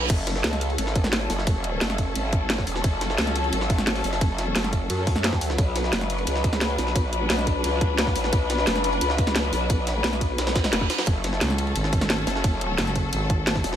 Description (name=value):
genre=dark technical drum and bass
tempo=175 BPM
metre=4/4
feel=straight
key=F# minor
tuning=A4 = 438 Hz
part: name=rich studio string section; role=sustained chords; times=0.0-13.8 s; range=F#3 to B4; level=-28 LUFS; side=left 2 dB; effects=sidechain pumping
part: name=growl bass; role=bass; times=0.0-13.8 s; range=E1 to F#2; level=-27 LUFS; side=equal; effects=chorus, overdrive, sidechain pumping
part: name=reverse cymbal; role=sound effects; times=0.0-0.1, 10.5-11.1 s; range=none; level=-31 LUFS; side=right 7 dB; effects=none
part: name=drum and bass drum kit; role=drums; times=0.1-13.7 s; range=crash cymbal, hi-hat, snare drum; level=-27 LUFS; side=equal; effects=overdrive, studio ambience
part: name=electronic kick drum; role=drums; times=0.1-13.6 s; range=none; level=-23 LUFS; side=equal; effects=overdrive, studio ambience
part: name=jungle sampler-style drum kit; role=drums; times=0.1-13.8 s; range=hi-hat, ride cymbal, snare drum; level=-33 LUFS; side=right 1 dB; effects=high-pass filter on cymbals, studio ambience, high-pass filter on snare, high-pass filter on hats
part: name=growling FM bass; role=bass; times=11.4-13.6 s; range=F#1 to C#2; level=-26 LUFS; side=equal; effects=none
room=light reverb, digital ambience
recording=none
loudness=-21 LUFS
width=side -10 dB against mid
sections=0.1-13.8 A section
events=drop 0.1-13.8; reverse cymbal 10.5-11.1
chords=0.1 F#m; 5.6 Bm; 11.1 F#m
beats=| 0.10 0.44 0.78 1.13 | 1.47 1.81 2.16 2.50 | 2.84 3.18 3.53 3.87 | 4.21 4.56 4.90 5.24 | 5.58 5.93 6.27 6.61 | 6.96 7.30 7.64 7.98 | 8.33 8.67 9.01 9.36 | 9.70 10.04 10.38 10.73 | 11.07 11.41 11.76 12.10 | 12.44 12.78 13.13 13.47